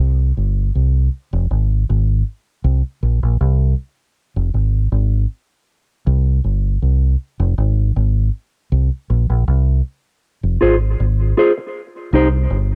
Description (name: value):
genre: dub reggae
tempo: 79 BPM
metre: 4/4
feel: straight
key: unclear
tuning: A4 = 440 Hz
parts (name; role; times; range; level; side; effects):
- deep dub fingered electric bass; bass; 0.0-12.8 s; F1 to C2; -17 LUFS; equal; none
- mellow electric guitar; accompaniment; 10.6-12.3 s; Eb4 to C5; -18 LUFS; equal; lush chorus, cassette tape, dub echo
room: little or no reverb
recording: home recording on cassette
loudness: -18 LUFS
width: mono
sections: 0.0-12.8 A section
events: break 0.0-10.2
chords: 0.0 C5; 1.1 N.C.; 2.6 Bbsus2; 4.2 N.C.; 5.7 C5; 7.2 N.C.; 8.7 Bbsus2; 10.2 Fm; 11.7 Cm